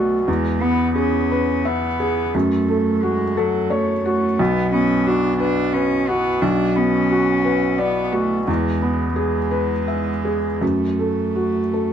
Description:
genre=neoclassical piano and strings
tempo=87 BPM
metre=3/4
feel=rubato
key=B dorian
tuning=A4 = 440 Hz
part: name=rich cello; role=second line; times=0.0-11.9 s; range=F#3 to D4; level=-22 LUFS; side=right 3 dB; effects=none
part: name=felt-muted upright piano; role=accompaniment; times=0.0-11.9 s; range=B1 to E5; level=-19 LUFS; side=left 1 dB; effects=none
room=light reverb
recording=none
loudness=-17 LUFS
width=side -9 dB against mid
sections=0.0-11.9 A section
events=none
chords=0.3 E; 2.3 F#m; 4.4 Bm; 8.5 E; 10.6 F#m

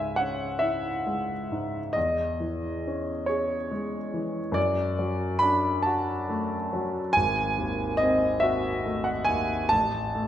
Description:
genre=classical, romantic nocturne for solo piano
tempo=46 BPM (dotted quarters)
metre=6/8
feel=rubato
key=C# minor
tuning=A4 = 440 Hz
part: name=clear grand piano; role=solo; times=0.0-10.3 s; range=G#1 to B5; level=-24 LUFS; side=equal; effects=none
room=wet recital hall reverb, RT60 1.6 s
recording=none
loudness=-24 LUFS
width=side -11 dB against mid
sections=0.0-10.3 A section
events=none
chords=0.0 C#m; 2.0 C#m/E; 4.6 D/F#; 7.2 G#7b9; 9.7 N.C.

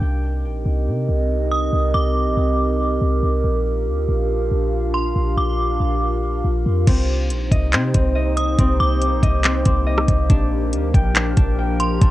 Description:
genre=hip hop, atmospheric cloud-rap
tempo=140 BPM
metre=4/4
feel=half-time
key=C minor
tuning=A4 = 440 Hz
part: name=warbly tape-like pad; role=sustained chords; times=0.0-12.1 s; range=F3 to F5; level=-24 LUFS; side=right 1 dB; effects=chorus, built-in reverb, sidechain pumping, cassette tape
part: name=concert harp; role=arpeggios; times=0.0-2.2, 6.9-12.1 s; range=C4 to G5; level=-27 LUFS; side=left 2 dB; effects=low-pass filter, cassette tape, tape echo
part: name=clean 808-style bass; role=bass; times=0.0-12.1 s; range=Bb1 to C3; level=-20 LUFS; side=equal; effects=none
part: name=metallic FM bell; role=melody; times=1.5-12.0 s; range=C6 to Eb6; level=-25 LUFS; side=equal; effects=chorus, low-pass filter, cassette tape, tape echo
part: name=smooth R&B drum kit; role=drums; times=6.9-12.1 s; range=crash cymbal, handclaps, hi-hat, kick drum, rim click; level=-18 LUFS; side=equal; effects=cassette tape
room=little or no reverb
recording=home recording on cassette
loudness=-17 LUFS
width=side -15 dB against mid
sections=0.0-6.9 A section; 6.9-12.1 B section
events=none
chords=0.0 Cm7; 3.4 Bb6; 6.9 Cm7; 10.3 Bb6

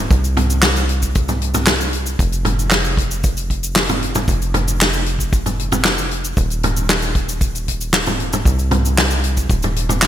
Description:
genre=synthwave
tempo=115 BPM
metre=4/4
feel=straight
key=unclear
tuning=A4 = 440 Hz
part: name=tight sequencer bass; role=bass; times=0.0-10.1 s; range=Eb1 to C2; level=-20 LUFS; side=equal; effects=sidechain pumping
part: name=kick drum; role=drums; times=0.1-9.6 s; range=none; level=-19 LUFS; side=equal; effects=none
part: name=natural country drum kit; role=drums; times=0.1-10.1 s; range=cabasa, handclaps, hi-hat, snare drum, toms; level=-18 LUFS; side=equal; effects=gated reverb
room=light reverb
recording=bright 1980s-style digital production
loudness=-15 LUFS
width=side -11 dB against mid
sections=0.0-10.1 A section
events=none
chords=none

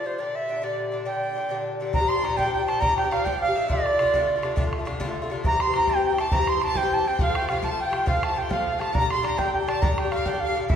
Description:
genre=celtic folk, Celtic slide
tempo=137 BPM (dotted quarters)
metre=12/8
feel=straight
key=G dorian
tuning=A4 = 437 Hz
part: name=bright reedy wooden flute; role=melody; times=0.0-10.8 s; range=C5 to C6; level=-24 LUFS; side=right 2 dB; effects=none
part: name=clear fiddle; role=second line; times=0.0-10.8 s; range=C5 to C6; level=-32 LUFS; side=left 3 dB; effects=none
part: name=Irish bouzouki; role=accompaniment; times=0.0-10.8 s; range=G2 to G4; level=-28 LUFS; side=left 4 dB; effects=none
part: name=bodhran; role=percussion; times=1.9-10.8 s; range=none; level=-28 LUFS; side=equal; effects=none
room=wet recital hall reverb, RT60 1.6 s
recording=recorded in a church or concert hall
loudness=-22 LUFS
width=side -8 dB against mid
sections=0.0-1.9 A section; 1.9-10.8 B section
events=none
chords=0.2 Gm; 1.9 Gm7; 3.7 Dm7; 5.4 C; 7.2 F; 8.9 Gm

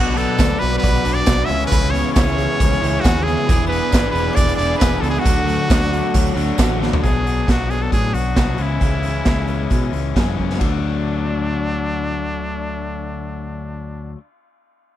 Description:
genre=indie rock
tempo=135 BPM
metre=4/4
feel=straight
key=D lydian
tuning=A4 = 440 Hz
part: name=brilliant trumpet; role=melody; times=0.0-14.1 s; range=D4 to E5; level=-24 LUFS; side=right 1 dB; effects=slapback echo
part: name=synth chime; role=second line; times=0.0-6.6 s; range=F#5 to E6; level=-33 LUFS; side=right 1 dB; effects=none
part: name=overdriven combo organ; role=sustained chords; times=0.0-7.0 s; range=A4 to D6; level=-34 LUFS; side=right 2 dB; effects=none
part: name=crunchy overdriven guitar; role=riff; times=0.0-14.2 s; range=B2 to G#4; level=-24 LUFS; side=left 10 dB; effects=none
part: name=overdriven electric guitar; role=riff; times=0.0-7.0 s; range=B2 to D5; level=-24 LUFS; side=right 7 dB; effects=wide subtle chorus, slapback echo
part: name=picked electric bass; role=bass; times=0.0-14.1 s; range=E1 to B2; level=-23 LUFS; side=equal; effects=none
part: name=raw garage drum kit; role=drums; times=0.2-10.7 s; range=hi-hat, kick drum, ride cymbal, snare drum, toms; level=-19 LUFS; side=equal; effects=none
part: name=tambourine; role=percussion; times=0.4-6.7 s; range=none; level=-34 LUFS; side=right 26 dB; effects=none
room=little or no reverb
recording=none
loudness=-16 LUFS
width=side -12 dB against mid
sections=0.0-7.0 A section; 7.0-10.6 B section; 10.6-14.2 C section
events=drum fill 6.8, 10.4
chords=0.0 Bm; 1.5 C#m7; 3.5 E7; 5.2 Dmaj7; 7.0 Bm; 8.6 C#m; 10.6 D

